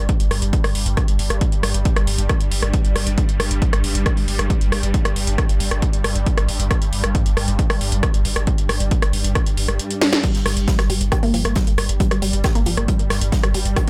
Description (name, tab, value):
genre	driving peak-time techno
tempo	136 BPM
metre	4/4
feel	straight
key	unclear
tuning	A4 = 441 Hz
part	saturated sub bass	bass	0.0-13.8 s	G1	-24 LUFS	equal	tube saturation, sidechain pumping, low-pass filter
part	swarming drone	drone	0.0-13.9 s	G2 to G3	-31 LUFS	equal	built-in reverb, phaser, sidechain pumping
part	electronic kick drum	drums	0.1-13.9 s	none	-22 LUFS	equal	none
part	techno drum kit	drums	0.1-13.9 s	crash cymbal, hi-hat, rim click, snare drum	-25 LUFS	equal	sidechain pumping on hats, sidechain pumping on cymbals
part	resonant blip pluck	riff	10.2-13.9 s	F3 to G4	-27 LUFS	equal	phaser, tube saturation, sidechain pumping, tape echo
part	unplugged drum kit	drums	10.2-13.9 s	hi-hat, snare drum	-37 LUFS	equal	high-pass filter on hats, high-pass filter on snare, high-pass filter on room
room	little or no reverb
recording	none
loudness	-19 LUFS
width	mono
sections	0.0-13.9 A section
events	drum fill 10.0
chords	none